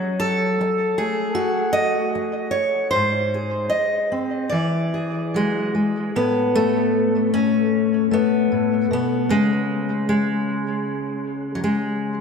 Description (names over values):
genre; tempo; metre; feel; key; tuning
folk, solo fingerstyle acoustic guitar; 76 BPM; 4/4; rubato; unclear; A4 = 440 Hz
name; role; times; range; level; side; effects
fingerpicked steel-string acoustic guitar; solo; 0.0-12.2 s; G#2 to D#5; -19 LUFS; left 1 dB; analog delay
room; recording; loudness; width
wet lush hall reverb, RT60 2.3 s; dreamy mix soaked in reverb; -19 LUFS; side -5 dB against mid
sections
0.0-6.1 A section; 6.1-12.2 B section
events
none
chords
0.0 F#m; 2.9 G#; 4.5 E7; 6.1 Aadd9; 9.3 N.C.